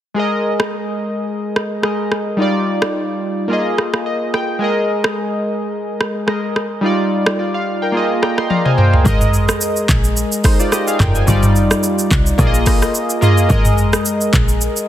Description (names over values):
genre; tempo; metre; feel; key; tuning
afrobeats; 108 BPM; 4/4; swing 55% on 16ths; unclear; A4 = 440 Hz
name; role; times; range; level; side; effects
warm analog keys; accompaniment; 0.1-14.9 s; G3 to C6; -17 LUFS; equal; chorus
afro-pop drum kit; drums; 0.6-14.9 s; handclaps, hi-hat, kick drum, rim click, shaker, toms; -16 LUFS; equal; overdrive
woody log drum bass; bass; 9.1-14.7 s; F1 to C2; -17 LUFS; equal; none
room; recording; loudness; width
light reverb, digital ambience; dense, heavily limited modern master; -14 LUFS; side -11 dB against mid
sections
0.2-9.1 A section; 9.1-14.9 B section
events
synth keys fill 3.8-4.6, 7.9-9.1; drum fill 8.5-9.1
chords
0.2 Absus2; 2.4 Ebmaj7/G; 3.5 Bb7sus4; 4.6 Absus2; 6.8 Ebmaj7/G; 7.9 Bb7sus4; 9.1 Absus2; 11.3 Ebmaj7/G; 12.4 Bb7sus4; 13.5 Absus2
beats
| 0.17 0.72 1.28 1.83 | 2.39 2.95 3.50 4.06 | 4.61 5.17 5.72 6.28 | 6.83 7.39 7.95 8.50 | 9.06 9.61 10.17 10.72 | 11.28 11.84 12.39 12.95 | 13.50 14.06 14.61